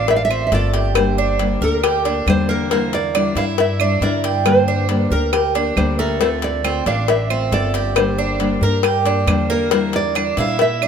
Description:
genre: latin, Cuban son and guajira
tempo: 137 BPM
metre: 4/4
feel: straight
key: unclear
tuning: A4 = 440 Hz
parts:
  - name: nylon-string guitar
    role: melody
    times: 0.0-10.9 s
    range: Bb4 to F5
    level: -22 LUFS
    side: right 3 dB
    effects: none
  - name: nylon-string guitar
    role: accompaniment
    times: 0.0-10.9 s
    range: D3 to G4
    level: -23 LUFS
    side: left 4 dB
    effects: none
  - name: Cuban tres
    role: arpeggios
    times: 0.0-10.9 s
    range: A3 to Bb4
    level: -22 LUFS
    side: right 6 dB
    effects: none
  - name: upright bass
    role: bass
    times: 0.0-10.9 s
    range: G1 to Bb2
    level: -22 LUFS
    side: equal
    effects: none
  - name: cowbell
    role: percussion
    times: 0.1-10.8 s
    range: none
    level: -22 LUFS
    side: left 12 dB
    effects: none
  - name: claves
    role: percussion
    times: 0.3-10.9 s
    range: none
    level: -26 LUFS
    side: right 10 dB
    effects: none
room: moderate plate reverb, RT60 3.1 s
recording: none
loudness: -15 LUFS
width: side -7 dB against mid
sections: 0.0-10.9 A section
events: none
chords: 0.0 Dm7; 1.0 Gm; 2.7 Em7b5; 4.5 Gm; 6.2 Dm7; 8.0 Gm; 9.7 Em7b5

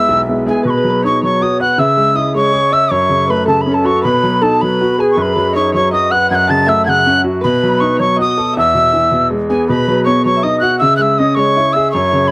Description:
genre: celtic folk, Celtic jig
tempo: 106 BPM (dotted quarters)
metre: 6/8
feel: straight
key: unclear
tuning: A4 = 440 Hz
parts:
  - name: reedy wooden whistle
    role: melody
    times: 0.0-12.3 s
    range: G#5 to A6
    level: -17 LUFS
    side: equal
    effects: none
  - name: bright wooden flute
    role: second line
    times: 0.0-12.3 s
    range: G#4 to A5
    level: -21 LUFS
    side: equal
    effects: none
  - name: bright grand piano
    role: accompaniment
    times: 0.0-12.3 s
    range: B1 to C#5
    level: -18 LUFS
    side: equal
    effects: none
  - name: Celtic harp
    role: second line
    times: 0.5-12.3 s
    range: G#4 to A5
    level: -24 LUFS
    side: equal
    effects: none
room: small room ambience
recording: dry, close 1970s-style studio recording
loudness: -13 LUFS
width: mono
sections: 0.7-9.7 A section; 9.7-12.3 A section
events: none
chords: 0.0 E; 0.7 B; 1.8 C#m; 2.9 F#m; 4.0 B; 6.3 F#m; 7.4 B7; 8.6 E; 9.7 B; 10.8 C#m

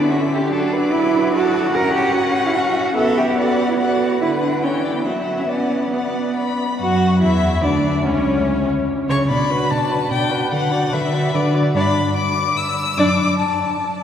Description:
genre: quick classical-period movement for string quartet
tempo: 146 BPM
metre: 3/4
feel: straight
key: B minor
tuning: A4 = 440 Hz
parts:
  - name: rich violin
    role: melody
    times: 0.0-14.0 s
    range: C#5 to E6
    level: -24 LUFS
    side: left 4 dB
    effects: none
  - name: warm violin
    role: second line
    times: 0.0-13.2 s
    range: C#4 to F#5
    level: -23 LUFS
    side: left 1 dB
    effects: none
  - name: warm viola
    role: accompaniment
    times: 0.0-13.2 s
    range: D3 to C#5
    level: -22 LUFS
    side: equal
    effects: none
  - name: warm cello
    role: bass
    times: 0.0-13.3 s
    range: C#2 to A#4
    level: -20 LUFS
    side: right 1 dB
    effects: none
room: wet cathedral reverb, RT60 5.1 s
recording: heard from further back in the room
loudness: -16 LUFS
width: side -9 dB against mid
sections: 0.0-6.8 A section; 6.8-14.0 B section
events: none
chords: 0.0 A7/D; 0.5 D/F#; 1.7 F#7/C#; 3.0 Bm; 4.2 Bm/D; 4.6 C#dim/E; 5.1 F#7(no3); 5.5 Bm; 6.8 Dadd9; 8.1 N.C.; 9.3 Bm; 10.5 Bm/D; 11.8 G; 13.0 D/F#

